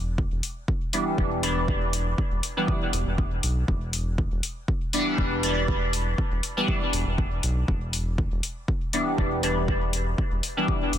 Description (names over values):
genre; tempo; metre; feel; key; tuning
dub techno; 120 BPM; 4/4; swing 54% on 16ths; E minor; A4 = 440 Hz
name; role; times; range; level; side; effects
round analog bass; bass; 0.0-11.0 s; E1 to B1; -28 LUFS; equal; tube saturation, sidechain pumping
electronic kick drum; drums; 0.2-10.8 s; none; -28 LUFS; equal; overdrive
electronic hi-hat; drums; 0.4-11.0 s; none; -30 LUFS; left 4 dB; overdrive
resonant sweep polysynth; stabs; 0.9-10.7 s; E3 to D4; -26 LUFS; equal; chorus, phaser, sidechain pumping, dub echo
room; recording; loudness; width
little or no reverb; dense, heavily limited modern master; -23 LUFS; side -10 dB against mid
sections
0.0-11.0 A section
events
none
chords
0.0 Em7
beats
0.18 0.68 1.18 | 1.68 2.18 2.68 3.18 | 3.68 4.18 4.68 5.18 | 5.68 6.18 6.68 7.18 | 7.68 8.18 8.68 9.18 | 9.68 10.18 10.68